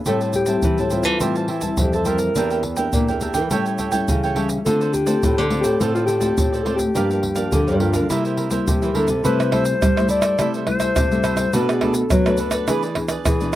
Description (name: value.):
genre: samba and choro.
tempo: 105 BPM.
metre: 4/4.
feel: straight.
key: C major from 9.2 s.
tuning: A4 = 440 Hz.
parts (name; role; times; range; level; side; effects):
nylon-string guitar; accompaniment; 0.0-13.6 s; F#2 to G#4; -24 LUFS; left 2 dB; none.
breathy alto saxophone; melody; 0.1-13.6 s; E4 to D5; -22 LUFS; left 2 dB; none.
cavaquinho; accompaniment; 0.1-13.6 s; D4 to A5; -27 LUFS; right 6 dB; slapback echo.
nylon-string guitar; bass; 0.1-13.6 s; E2 to G3; -23 LUFS; equal; none.
tube shaker, surdo, pandeiro and tamborim; percussion; 0.1-13.6 s; none; -24 LUFS; right 1 dB; none.
room: light reverb.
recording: recorded outdoors, with no room sound.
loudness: -17 LUFS.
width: side -14 dB against mid.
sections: 0.0-9.2 A section; 9.2-13.6 B section.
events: none.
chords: 0.1 Am7; 2.4 Em7b5; 3.5 A7; 4.7 Dm7; 7.0 Gm7; 8.1 C7; 9.2 C6; 11.5 Bm7; 12.7 E7.